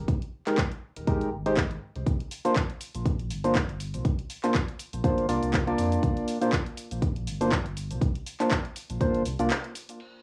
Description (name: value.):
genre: deep house.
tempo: 121 BPM.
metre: 4/4.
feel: swing 56% on 16ths.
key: unclear.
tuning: A4 = 442 Hz.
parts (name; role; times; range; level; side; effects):
sub bass with octave; bass; 0.0-9.5 s; Eb1 to F2; -35 LUFS; equal; sidechain pumping.
electronic kick drum; drums; 0.1-9.1 s; none; -30 LUFS; equal; small room ambience.
house drum kit; drums; 0.1-10.1 s; crash cymbal, handclaps, hi-hat, shaker; -35 LUFS; equal; low-pass filter on hats, small room ambience, low-pass filter on snare, low-pass filter on perc, low-pass filter on cymbals.
percussive organ stab; stabs; 0.5-9.5 s; Ab3 to D5; -30 LUFS; equal; chorus, cassette tape, sidechain pumping, analog delay.
room: light reverb.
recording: home recording on cassette, studio ambience.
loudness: -28 LUFS.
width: mono.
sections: 0.0-10.0 A section.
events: break 9.5-10.0; band accent 9.5.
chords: 0.0 Fm11 (rootless); 1.8 C9sus4.